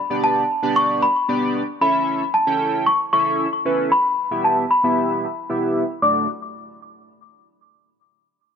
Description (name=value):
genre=pop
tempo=114 BPM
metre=4/4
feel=straight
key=unclear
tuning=A4 = 440 Hz
part: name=small celesta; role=melody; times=0.0-6.3 s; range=A5 to D6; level=-19 LUFS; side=left 1 dB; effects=low-pass filter, ping-pong delay
part: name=chorused polysynth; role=accompaniment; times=0.1-6.3 s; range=A3 to G5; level=-22 LUFS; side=right 2 dB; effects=low-pass filter
room=moderate plate reverb, RT60 2.4 s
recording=dark, warm production, nothing above 11.0 kHz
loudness=-17 LUFS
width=side -7 dB against mid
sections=0.0-6.0 A section; 6.0-8.1 B section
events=filter sweep 0.0-6.0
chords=0.0 G; 1.8 A; 3.9 Em; 6.0 D